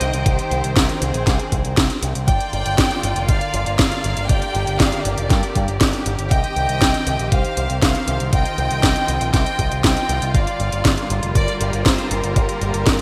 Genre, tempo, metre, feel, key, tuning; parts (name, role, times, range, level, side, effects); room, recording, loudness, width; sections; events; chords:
italo disco; 119 BPM; 4/4; straight; C minor; A4 = 439 Hz
warm studio violin section; melody; 0.0-13.0 s; G4 to G5; -26 LUFS; equal; delay
muted studio string section; sustained chords; 0.0-13.0 s; D3 to G5; -29 LUFS; equal
picked electric bass with an envelope filter; bass; 0.0-13.0 s; F1 to G2; -26 LUFS; equal
house drum kit; drums; 0.0-13.0 s; hi-hat, snare drum; -24 LUFS; equal; overdrive, gated reverb
electronic kick drum; drums; 0.3-13.0 s; -22 LUFS; equal
moderate lush hall reverb, RT60 2.1 s; bright 1980s-style digital production; -19 LUFS; mono
0.0-13.0 A section
0.0 Cm; 2.3 Gm7; 6.3 Cm; 10.3 Gm7